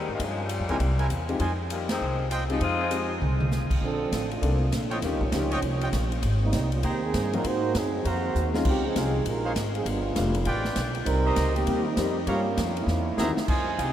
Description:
jazz, big band swing; 199 BPM; 4/4; swing 63% on 8ths; F minor; A4 = 439 Hz
warm saxophone section; melody; 0.0-3.2, 13.8-13.9 s; Bb2 to G4; -32 LUFS; left 3 dB
upright bass; bass; 0.0-13.9 s; F1 to Ab2; -28 LUFS; equal
swinging big-band drum kit; drums; 0.2-13.9 s; crash cymbal, hi-hat, kick drum, ride cymbal, snare drum, toms; -32 LUFS; equal
clear concert grand piano; accompaniment; 0.7-13.4 s; E3 to A4; -33 LUFS; left 4 dB
clear trumpet section; stabs; 0.7-13.9 s; Eb4 to Bb5; -34 LUFS; right 1 dB
warm trombone section; second line; 3.8-13.4 s; Eb3 to C5; -29 LUFS; right 3 dB
wet huge ambient reverb, RT60 8.0 s; in a vast, echoing space; -24 LUFS; side -11 dB against mid
0.0-3.8 A section; 3.8-13.5 B section
band accent 1.9; drum fill 3.2-3.5, 8.3-8.7, 12.9-13.5; trombone section solo 3.8-13.5
0.2 Gm7b5; 0.8 C7b13; 1.4 Fm7; 3.8 Bbmaj9; 5.0 Eb9; 6.2 Abmaj9; 7.4 Ab13; 8.7 Dbmaj9; 9.9 G7; 11.1 Cm7; 12.3 Gm7b5; 12.9 C7alt

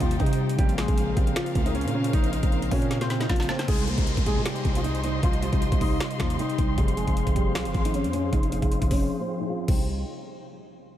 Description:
hip hop, trap; 155 BPM; 4/4; half-time; C phrygian; A4 = 442 Hz
flamenco guitar; melody; 0.0-9.9 s; F3 to Eb5; -30 LUFS; left 1 dB; lush chorus, low-pass filter, diffuse ambient delay
mellow tine electric piano; accompaniment; 0.0-9.9 s; C3 to G5; -31 LUFS; equal; medium stereo tremolo, low-pass filter
dark symphonic string section; sustained chords; 0.0-9.9 s; Db3 to C6; -35 LUFS; left 2 dB; low-pass filter
growling 808-style bass; bass; 0.0-10.0 s; F1 to C3; -29 LUFS; equal
trap drum kit; drums; 0.0-9.8 s; crash cymbal, finger snaps, hi-hat, kick drum, snare drum; -26 LUFS; equal
downlifter; sound effects; 3.7-6.8 s; -38 LUFS; left 1 dB
light reverb; -22 LUFS; side -12 dB against mid
0.0-3.7 A section; 3.7-9.9 B section; 9.9-11.0 C section
drum fill 2.9-3.7; filter sweep 3.7-9.9; break 9.1-9.9
0.0 Cm; 0.6 Bbmadd9; 3.7 Cm; 6.8 Fm; 9.7 Cm; 9.9 N.C.

